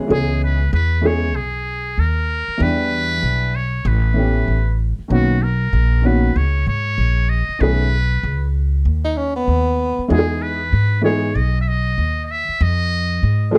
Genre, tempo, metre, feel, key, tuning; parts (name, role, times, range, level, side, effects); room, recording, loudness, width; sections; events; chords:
hip hop, jazz-hop; 96 BPM; 4/4; swing 62% on 16ths; B major; A4 = 440 Hz
warm upright piano; accompaniment; 0.0-13.6 s; D#3 to G#4; -22 LUFS; equal; plate reverb
trumpet with metal mute; melody; 0.1-13.6 s; F#4 to E5; -26 LUFS; equal
upright bass; bass; 0.1-13.6 s; A1 to G#2; -20 LUFS; equal
breathy tenor saxophone; second line; 9.0-10.1 s; B3 to D#4; -22 LUFS; equal
moderate small room reverb, RT60 0.5 s; dark, warm production; -18 LUFS; mono
0.0-5.1 A section; 5.1-13.6 A section
0.1 C#m7; 2.6 Em7; 3.9 A9; 5.1 Bmaj9; 7.6 Badd9; 10.1 Emaj7; 12.6 Fm7